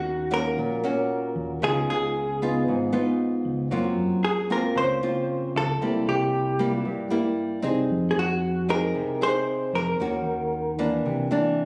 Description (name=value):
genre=bossa nova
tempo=115 BPM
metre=4/4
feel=straight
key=unclear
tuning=A4 = 441 Hz
part: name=vintage hollow-body jazz guitar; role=melody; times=0.0-11.7 s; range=Gb4 to C5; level=-29 LUFS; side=equal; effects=none
part: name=nylon-string guitar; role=accompaniment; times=0.0-11.7 s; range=G2 to Ab4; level=-27 LUFS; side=equal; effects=none
part: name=fingered electric bass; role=bass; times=0.0-11.3 s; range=Ab1 to G2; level=-34 LUFS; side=equal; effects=none
room=light reverb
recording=recorded on a phone in the room, studio reverb, compression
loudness=-25 LUFS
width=mono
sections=0.0-11.7 A section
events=none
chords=0.0 Ebm7; 1.6 Db9; 3.7 Gbmaj7#11; 5.8 C7; 7.9 Fm7; 10.0 Ebm7; 11.0 C9